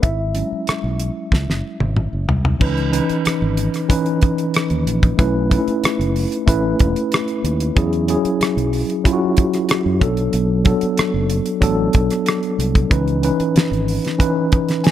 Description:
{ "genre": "lush 1970s-style soul", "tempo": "93 BPM", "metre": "4/4", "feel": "straight", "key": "unclear", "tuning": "A4 = 439 Hz", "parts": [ { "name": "mellow tine electric piano", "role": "accompaniment", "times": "0.0-14.9 s", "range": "E3 to G#5", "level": "-19 LUFS", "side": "equal", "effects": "medium stereo tremolo" }, { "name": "fingered electric bass", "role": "bass", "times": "0.0-14.0 s", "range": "E1 to F#2", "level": "-21 LUFS", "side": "equal", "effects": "none" }, { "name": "damped 70s drum kit", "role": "drums", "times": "0.0-14.9 s", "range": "crash cymbal, hi-hat, kick drum, rim click, snare drum, toms", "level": "-18 LUFS", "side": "equal", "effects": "none" } ], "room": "small room ambience", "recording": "none", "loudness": "-16 LUFS", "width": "side -11 dB against mid", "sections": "0.0-2.6 A section; 2.6-14.9 B section", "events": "tine electric piano solo 0.0-2.6; drum fill 1.3-2.6", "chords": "0.0 E6/G#; 2.6 C#m9; 5.2 B9sus4; 7.8 E69; 10.0 Bm7; 12.9 C#m9" }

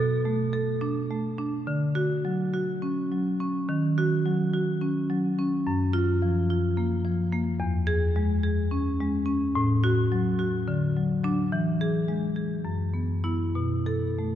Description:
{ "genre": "classical, contemporary piece for solo marimba", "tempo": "212 BPM (eighths)", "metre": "7/8", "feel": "rubato", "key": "B dorian", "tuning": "A4 = 440 Hz", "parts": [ { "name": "marimba with medium hard mallets", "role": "solo", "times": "0.0-14.4 s", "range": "E2 to A4", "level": "-24 LUFS", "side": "equal", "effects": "none" } ], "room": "wet church reverb, RT60 3.7 s", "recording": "dark, warm production", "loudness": "-24 LUFS", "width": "side -11 dB against mid", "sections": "0.0-14.4 A section", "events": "none", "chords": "0.0 Bm7; 1.7 Dmaj7; 3.7 D#m7; 5.7 F#maj7; 7.6 E6; 9.6 F#m/A; 10.7 D; 11.5 E; 12.7 F#7sus4; 13.6 B7(no3)" }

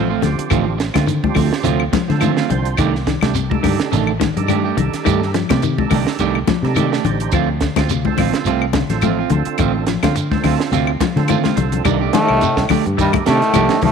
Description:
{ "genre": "afrobeat", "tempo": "106 BPM", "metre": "4/4", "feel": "swing 56% on 16ths", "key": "C dorian", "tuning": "A4 = 440 Hz", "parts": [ { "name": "percussive tonewheel organ", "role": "accompaniment", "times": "0.0-13.9 s", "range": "A3 to C5", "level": "-26 LUFS", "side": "right 12 dB", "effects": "slow rotary speaker, overdrive, chorus vibrato" }, { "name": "semi-hollow electric guitar", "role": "arpeggios", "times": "0.0-13.9 s", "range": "C3 to G3", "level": "-23 LUFS", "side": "left 12 dB", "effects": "none" }, { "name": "electric guitar at the edge of break-up", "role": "stabs", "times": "0.0-13.9 s", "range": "Eb3 to G4", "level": "-21 LUFS", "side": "right 12 dB", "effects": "wide subtle chorus, tape echo" }, { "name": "fingered electric bass", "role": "bass", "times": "0.0-13.9 s", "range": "A1 to D3", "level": "-20 LUFS", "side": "equal", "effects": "none" }, { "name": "compact cocktail drum kit", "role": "drums", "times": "0.2-13.9 s", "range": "hi-hat, kick drum, snare drum", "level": "-23 LUFS", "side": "right 4 dB", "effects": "none" }, { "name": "congas", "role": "percussion", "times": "0.2-13.9 s", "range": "none", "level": "-21 LUFS", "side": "left 11 dB", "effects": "none" }, { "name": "shekere", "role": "percussion", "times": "0.2-13.9 s", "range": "none", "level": "-28 LUFS", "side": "right 4 dB", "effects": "none" }, { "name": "claves", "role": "percussion", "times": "0.5-13.7 s", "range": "none", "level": "-27 LUFS", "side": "left 14 dB", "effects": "none" }, { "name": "trombone with metal mute", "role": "melody", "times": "12.1-13.9 s", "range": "G3 to A3", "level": "-17 LUFS", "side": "equal", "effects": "none" }, { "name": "growling tenor saxophone", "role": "second line", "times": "12.1-13.9 s", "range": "Eb3 to F3", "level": "-26 LUFS", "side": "right 11 dB", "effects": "none" }, { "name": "warm trombone section", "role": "second line", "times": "12.1-13.9 s", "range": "G2 to A2", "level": "-24 LUFS", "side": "left 11 dB", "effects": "none" } ], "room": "light reverb, studio reverb", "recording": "1960s-style stereo with parts hard left and right", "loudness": "-14 LUFS", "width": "side -6 dB against mid", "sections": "0.0-11.8 A section; 11.8-13.9 B section", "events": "drum fill 11.4-11.8", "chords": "0.0 Cm69; 7.3 Dm7; 11.8 Cm69" }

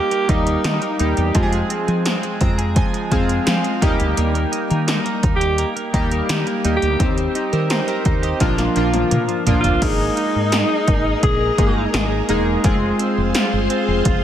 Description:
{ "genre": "1980s-style pop", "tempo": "85 BPM", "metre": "4/4", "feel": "straight", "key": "Eb major", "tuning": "A4 = 440 Hz", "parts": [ { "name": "raspy alto saxophone", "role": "melody", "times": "0.0-1.0, 5.4-11.9 s", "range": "Eb4 to Ab4", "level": "-22 LUFS", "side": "right 1 dB", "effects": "digital delay" }, { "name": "chorused retro synth keys", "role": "accompaniment", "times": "0.0-14.2 s", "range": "F3 to Bb5", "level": "-21 LUFS", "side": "left 1 dB", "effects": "none" }, { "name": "twelve-string electric guitar", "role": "riff", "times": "0.0-14.2 s", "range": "F3 to Ab4", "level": "-26 LUFS", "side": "right 4 dB", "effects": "analog chorus, digital delay" }, { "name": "80s electronic pad drums", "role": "drums", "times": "0.1-14.2 s", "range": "crash cymbal, hi-hat, kick drum, snare drum, toms", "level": "-21 LUFS", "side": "equal", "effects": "gated reverb on snare and toms" }, { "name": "woody fretless electric bass", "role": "bass", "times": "0.3-14.2 s", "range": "Fb1 to F3", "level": "-22 LUFS", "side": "equal", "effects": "none" }, { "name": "string machine, violas", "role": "sustained chords", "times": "9.8-14.2 s", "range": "Ab4 to C6", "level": "-26 LUFS", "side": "equal", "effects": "ensemble chorus" } ], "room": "light reverb", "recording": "none", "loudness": "-16 LUFS", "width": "side -10 dB against mid", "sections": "0.0-9.8 A section; 9.8-14.2 B section", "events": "synth keys fill 2.1-4.2; drum fill 8.4-9.8", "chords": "0.0 Eb; 1.4 Fm; 3.8 Eb; 7.0 Cm/Eb; 8.4 Bb; 9.8 Absus2; 12.6 Fm" }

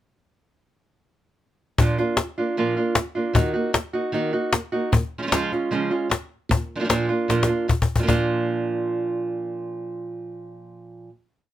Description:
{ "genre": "flamenco", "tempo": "152 BPM", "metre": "4/4", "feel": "straight", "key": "unclear", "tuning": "A4 = 439 Hz", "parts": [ { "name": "nylon-string guitar", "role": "accompaniment", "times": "1.8-11.1 s", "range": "Bb2 to Gb4", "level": "-23 LUFS", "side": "right 2 dB", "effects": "none" }, { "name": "cajon", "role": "percussion", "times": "1.8-8.2 s", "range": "none", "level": "-20 LUFS", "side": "left 2 dB", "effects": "none" } ], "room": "light reverb", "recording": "close, detailed microphones", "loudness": "-21 LUFS", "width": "side -12 dB against mid", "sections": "1.8-8.1 groove; 8.1-11.3 final chord", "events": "drum fill 7.3-8.1", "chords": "1.8 Bb; 3.4 Ebm; 4.9 Db; 6.5 Bb" }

